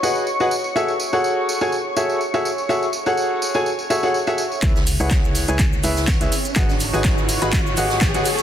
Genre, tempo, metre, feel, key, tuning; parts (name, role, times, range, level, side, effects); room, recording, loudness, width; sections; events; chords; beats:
piano house; 124 BPM; 4/4; swing 54% on 16ths; F# dorian; A4 = 438 Hz
analog string pad; sustained chords; 0.0-8.4 s; C#5 to C#6; -28 LUFS; equal; ensemble chorus, sidechain pumping
bright baby grand piano; riff; 0.0-8.2 s; E4 to B5; -21 LUFS; equal; sidechain pumping, low-pass filter, tape echo
tambourine; percussion; 0.0-8.4 s; -30 LUFS; right 3 dB
organ-like FM bass; bass; 4.6-8.2 s; G#1 to C#2; -25 LUFS; equal; sidechain pumping
electronic kick drum; drums; 4.6-8.1 s; -20 LUFS; equal; overdrive
house drum kit; drums; 4.6-8.4 s; cabasa, handclaps, hi-hat; -25 LUFS; equal; overdrive
shaker and snare drum; drums; 4.6-8.4 s; -34 LUFS; equal
riser; sound effects; 5.4-8.4 s; -27 LUFS; equal
moderate lush hall reverb, RT60 2.0 s; dense, heavily limited modern master; -17 LUFS; side -10 dB against mid
0.0-4.6 A section; 4.6-8.4 B section
build-up 4.6-8.4; drum fill 4.6-8.4; filter sweep on analog synth pad 4.6-8.4; filter sweep 4.6-8.4; riser 5.4-8.4
0.0 G#m7; 0.5 F#m9; 4.6 C#m7; 6.3 G#m7
0.27 | 0.76 1.24 1.72 2.21 | 2.69 3.17 3.66 4.14 | 4.63 5.11 5.59 6.08 | 6.56 7.05 7.53 8.01